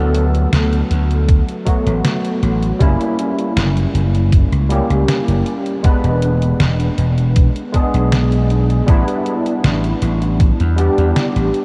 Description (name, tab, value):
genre	vaporwave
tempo	79 BPM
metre	4/4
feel	straight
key	D major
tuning	A4 = 440 Hz
part	overdriven tine electric piano	accompaniment	0.0-11.6 s	F#3 to B4	-21 LUFS	equal	ensemble chorus, vintage 12-bit sampler grit, tape echo
part	vintage slap bass	bass	0.0-11.5 s	E1 to E2	-18 LUFS	equal	tube saturation
part	detuned 8-bit digital drum machine	drums	0.1-11.6 s	hi-hat, snare drum	-25 LUFS	equal	none
part	electronic kick drum	drums	1.3-10.6 s	none	-15 LUFS	equal	none
room	light reverb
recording	cassette tape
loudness	-16 LUFS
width	mono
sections	0.0-11.6 A section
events	none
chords	0.0 D6; 2.8 F#7b9; 5.8 E7; 8.9 A9sus4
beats	0.53 1.29 2.05 | 2.81 3.56 4.32 5.08 | 5.84 6.60 7.36 8.12 | 8.88 9.64 10.40 11.16